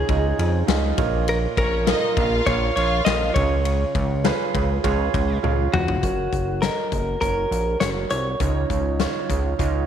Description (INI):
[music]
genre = piano-driven pop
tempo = 101 BPM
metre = 4/4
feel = straight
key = F# major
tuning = A4 = 440 Hz
[part]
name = direct-recorded clean electric guitar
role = melody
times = 0.0-9.9 s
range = F#4 to D#5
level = -25 LUFS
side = left 1 dB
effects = none
[part]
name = warm grand piano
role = accompaniment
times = 0.0-9.9 s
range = A#2 to G#5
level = -26 LUFS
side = right 10 dB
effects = none
[part]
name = chorused synth bass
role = bass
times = 0.0-9.8 s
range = E#1 to E#2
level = -23 LUFS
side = equal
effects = none
[part]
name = huge arena drum kit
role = drums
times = 0.1-9.7 s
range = hi-hat, kick drum, ride cymbal, snare drum, toms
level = -26 LUFS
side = left 4 dB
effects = none
[part]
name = bright studio violin section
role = second line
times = 1.6-3.3 s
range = C#4 to E#5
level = -27 LUFS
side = left 3 dB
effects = none
[sound]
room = moderate echo chamber reverb, RT60 1.9 s, small room ambience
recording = 1960s-style stereo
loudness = -19 LUFS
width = side -9 dB against mid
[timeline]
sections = 0.0-6.0 A section; 6.0-9.9 B section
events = grand piano fill 0.4-1.3; drum fill 5.4-6.0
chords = 0.0 C#add9; 1.0 A#m; 3.4 C#; 6.0 F#; 8.4 C#add9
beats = 0.09 0.68 | 1.28 1.87 2.47 3.06 | 3.65 4.25 4.84 5.44 | 6.03 6.63 7.22 7.81 | 8.41 9.00 9.60